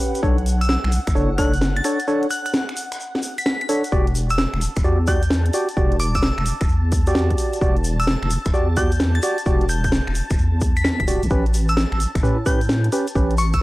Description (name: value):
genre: UK garage, two-step garage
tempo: 130 BPM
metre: 4/4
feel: swing 66% on 16ths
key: E dorian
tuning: A4 = 440 Hz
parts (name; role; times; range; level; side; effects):
- soft string machine; sustained chords; 0.0-13.6 s; F#5 to A5; -35 LUFS; equal; ensemble chorus, sidechain pumping
- percussive organ stab; stabs; 0.0-13.3 s; C#4 to D5; -23 LUFS; equal; chorus, analog delay
- house drum kit; drums; 0.0-13.6 s; finger snaps, hi-hat, snare drum; -25 LUFS; equal; overdrive
- egg shaker; percussion; 0.0-13.6 s; none; -34 LUFS; left 2 dB; none
- deep soft wobble bass; bass; 0.2-13.6 s; D1 to A2; -20 LUFS; equal; chorus
- electronic kick drum; drums; 0.2-13.6 s; none; -21 LUFS; equal; overdrive
- glassy synth bell; melody; 0.6-13.6 s; C#6 to B6; -27 LUFS; equal; chorus, phaser, analog delay
room: digital ambience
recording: dry, gritty hardware recording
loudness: -17 LUFS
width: side -18 dB against mid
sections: 0.0-13.6 A section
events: break 2.1-3.9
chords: 0.2 Bm7; 3.9 Em9; 11.3 A7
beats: | 0.23 0.69 1.15 1.61 | 2.08 2.54 3.00 3.46 | 3.92 4.38 4.84 5.31 | 5.77 6.23 6.69 7.15 | 7.61 8.08 8.54 9.00 | 9.46 9.92 10.38 10.85 | 11.31 11.77 12.23 12.69 | 13.15 13.61